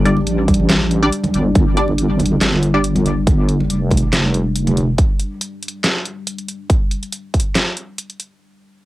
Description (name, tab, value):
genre	deep dubstep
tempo	140 BPM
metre	4/4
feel	swing 54% on 16ths, half-time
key	unclear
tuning	A4 = 440 Hz
part	deep dark ambient pad	sustained chords	0.0-6.7 s	G3 to D4	-23 LUFS	left 2 dB	chorus, built-in reverb, cassette tape
part	deep soft wobble bass	bass	0.0-5.0 s	F1 to A1	-17 LUFS	equal	chorus
part	filtered dub chord stab	stabs	0.1-2.8 s	G3 to D5	-20 LUFS	equal	phaser, cassette tape, dub echo
part	dubstep drum kit	drums	0.1-8.3 s	handclaps, hi-hat, snare drum	-19 LUFS	equal	overdrive, cassette tape
part	congas	percussion	0.2-4.9 s	none	-24 LUFS	right 2 dB	none
part	electronic kick drum	drums	0.5-7.4 s	none	-16 LUFS	equal	overdrive, cassette tape
room	light reverb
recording	home recording on cassette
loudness	-14 LUFS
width	side -17 dB against mid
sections	0.0-8.4 A section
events	drop 0.0-8.4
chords	0.0 G5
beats	0.27 0.70 1.13 | 1.55 1.98 2.41 2.84 | 3.27 3.70 4.13 4.55 | 4.98 5.41 5.84 6.27 | 6.70 7.13 7.55 7.98